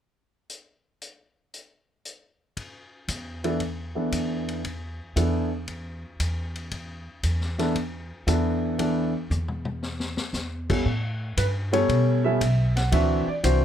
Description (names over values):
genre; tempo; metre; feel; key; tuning
jazz piano trio; 116 BPM; 4/4; swing 69% on 8ths; unclear; A4 = 441 Hz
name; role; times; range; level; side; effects
vintage drum kit; drums; 0.5-13.6 s; crash cymbal, hi-hat, kick drum, ride cymbal, snare drum, toms; -33 LUFS; left 2 dB; none
upright bass; bass; 3.1-13.6 s; B1 to B2; -26 LUFS; equal; none
warm grand piano; melody; 3.4-13.6 s; E3 to F#5; -24 LUFS; equal; none
room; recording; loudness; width
little or no reverb; none; -23 LUFS; side -10 dB against mid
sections
0.5-2.6 A section; 2.6-10.9 B section; 10.9-13.6 C section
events
drum fill 9.3-10.3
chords
0.5 N.C.; 2.6 E7sus4; 10.9 A9; 12.9 D9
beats
| 0.49 1.01 1.53 2.05 | 2.57 3.09 3.60 4.12 | 4.64 5.16 5.68 6.20 | 6.72 7.24 7.76 8.27 | 8.79 9.31 9.83 10.34 | 10.86 11.38 11.89 12.41 | 12.92 13.44